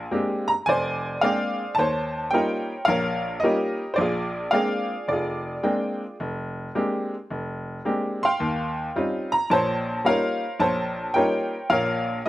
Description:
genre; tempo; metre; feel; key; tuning
solo jazz; 109 BPM; 4/4; swing 68% on 8ths; unclear; A4 = 440 Hz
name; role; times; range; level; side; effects
bright upright piano; solo; 0.0-12.3 s; F1 to C6; -22 LUFS; equal; none
room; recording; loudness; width
little or no reverb; recorded outdoors, with no room sound; -22 LUFS; side -15 dB against mid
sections
0.0-12.3 A section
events
none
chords
0.0 Bb13; 1.8 Eb13; 4.0 Bb13; 8.4 Eb13

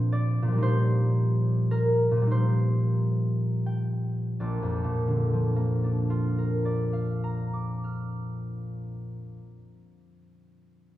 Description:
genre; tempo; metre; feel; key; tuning
classical, solo harp piece; 27-41 BPM (dotted quarters); 6/8; rubato; Bb major; A4 = 439 Hz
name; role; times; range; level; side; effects
concert harp; solo; 0.0-10.0 s; Bb1 to F6; -24 LUFS; equal; none
room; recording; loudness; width
wet recital hall reverb, RT60 1.7 s; recorded in a church or concert hall; -24 LUFS; side -14 dB against mid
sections
0.0-4.4 A section; 4.4-8.6 B section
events
slowing down 0.0-4.4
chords
0.0 Bbadd9; 0.6 Eb69/Bb; 4.4 Bb

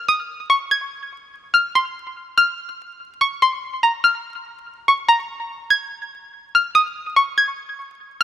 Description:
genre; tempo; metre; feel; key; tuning
hip hop; 144 BPM; 4/4; half-time; F minor; A4 = 439 Hz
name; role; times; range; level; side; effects
string-like resonator pluck; solo; 0.0-8.2 s; Bb5 to Ab6; -17 LUFS; left 1 dB; chorus, low-pass filter, tape echo
room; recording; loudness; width
light reverb; vinyl crackle; -17 LUFS; side -11 dB against mid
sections
0.0-8.2 A section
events
none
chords
none

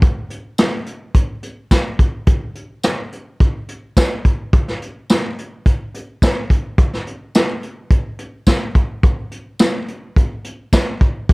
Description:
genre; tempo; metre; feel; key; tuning
blues; 106 BPM; 4/4; straight; none; none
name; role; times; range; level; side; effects
vintage brush drum kit; drums; 0.0-11.3 s; hi-hat, kick drum, snare drum, tambourine; -14 LUFS; equal; none
room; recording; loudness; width
little or no reverb; none; -16 LUFS; side -28 dB against mid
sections
0.0-11.3 A section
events
none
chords
none

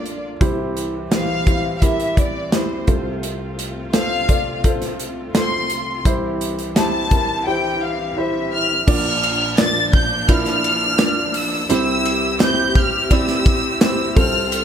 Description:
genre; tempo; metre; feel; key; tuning
piano-driven pop; 85 BPM; 4/4; straight; unclear; A4 = 440 Hz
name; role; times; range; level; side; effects
warm studio violin section; melody; 0.0-14.6 s; C5 to A6; -21 LUFS; left 1 dB; none
dark grand piano; accompaniment; 0.0-14.6 s; Bb1 to D5; -23 LUFS; right 1 dB; none
rich studio string section; sustained chords; 0.0-14.6 s; C3 to A4; -29 LUFS; left 2 dB; none
modern studio drum kit; drums; 0.1-14.6 s; crash cymbal, hi-hat, kick drum, ride cymbal, snare drum; -19 LUFS; equal; none
group handclap; percussion; 9.6-14.0 s; none; -35 LUFS; right 6 dB; none
room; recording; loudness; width
moderate large studio reverb, RT60 1.4 s, studio reverb; none; -16 LUFS; side -8 dB against mid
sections
0.0-8.9 A section; 8.9-14.6 B section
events
none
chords
0.4 C; 2.9 F/C; 6.1 C; 8.9 Bb; 11.7 C

